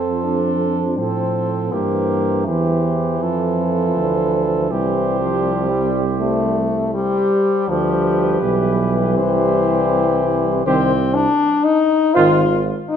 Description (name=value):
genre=classical, brass quintet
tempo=80 BPM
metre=4/4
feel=rubato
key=unclear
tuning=A4 = 440 Hz
part: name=dark cornet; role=melody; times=0.0-12.4 s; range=B4 to C5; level=-26 LUFS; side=left 7 dB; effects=none
part: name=warm flugelhorn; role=second line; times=0.0-12.4 s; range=F4 to A4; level=-24 LUFS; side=right 6 dB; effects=none
part: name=mellow trombone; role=accompaniment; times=0.0-12.4 s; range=Eb3 to G3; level=-25 LUFS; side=right 4 dB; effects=none
part: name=warm French horn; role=accompaniment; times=0.0-13.0 s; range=E3 to F4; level=-19 LUFS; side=left 4 dB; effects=none
part: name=warm tuba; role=bass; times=0.0-12.8 s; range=Ab1 to A2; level=-21 LUFS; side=right 4 dB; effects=none
room=moderate recital hall reverb, RT60 1.6 s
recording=dark, warm production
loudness=-15 LUFS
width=side -8 dB against mid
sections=0.0-13.0 A section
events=none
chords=0.0 F; 1.7 C7/G; 3.2 F; 4.7 C5; 7.7 G7/D; 9.2 C; 10.7 Cm; 12.2 Fm7/Ab